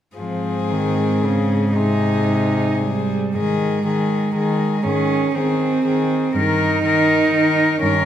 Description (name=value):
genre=classical, lyrical piece for cello ensemble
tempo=36-41 BPM (dotted quarters)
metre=6/8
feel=rubato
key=Ab major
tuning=A4 = 440 Hz
part: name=warm cello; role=melody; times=0.2-8.1 s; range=Ab4 to Bb4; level=-23 LUFS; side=left 7 dB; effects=none
part: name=dark cello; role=second line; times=0.2-8.1 s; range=G3 to Eb4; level=-20 LUFS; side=right 3 dB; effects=none
part: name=rich cello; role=accompaniment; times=0.2-8.1 s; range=C3 to F3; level=-24 LUFS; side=left 2 dB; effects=none
part: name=dark cello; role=bass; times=0.2-8.1 s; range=G2 to Ab2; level=-23 LUFS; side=right 1 dB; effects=none
room=wet recital hall reverb, RT60 1.5 s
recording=none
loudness=-16 LUFS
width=side -10 dB against mid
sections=0.2-3.4 A section; 3.4-8.1 B section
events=none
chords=0.2 Ab; 6.4 Eb/G